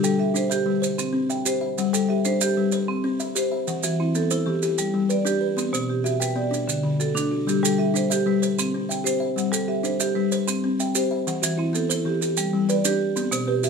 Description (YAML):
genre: southern african traditional, mbira-style interlocking cycle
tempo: 126 BPM (dotted quarters)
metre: 12/8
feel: straight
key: G major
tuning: A4 = 440 Hz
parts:
  - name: buzzing kalimba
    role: arpeggios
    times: 0.0-13.7 s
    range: D3 to G5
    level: -25 LUFS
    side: left 6 dB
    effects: none
  - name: marimba with medium hard mallets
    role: arpeggios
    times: 0.0-13.7 s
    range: B2 to G5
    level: -24 LUFS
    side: right 3 dB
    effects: none
  - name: maracas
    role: percussion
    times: 0.0-13.7 s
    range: none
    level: -27 LUFS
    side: right 7 dB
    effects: none
room: moderate studio reverb, RT60 0.7 s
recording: minimal, uncompressed stereo recording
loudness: -21 LUFS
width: side -5 dB against mid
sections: 0.0-1.8 A section; 1.8-13.7 B section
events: none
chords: 0.0 G; 0.8 C; 1.8 G; 2.7 C; 3.7 Em; 4.6 G; 5.6 Bm; 6.5 D; 7.5 G; 8.4 C; 9.4 G; 10.3 C; 11.3 Em; 12.2 G; 13.2 N.C.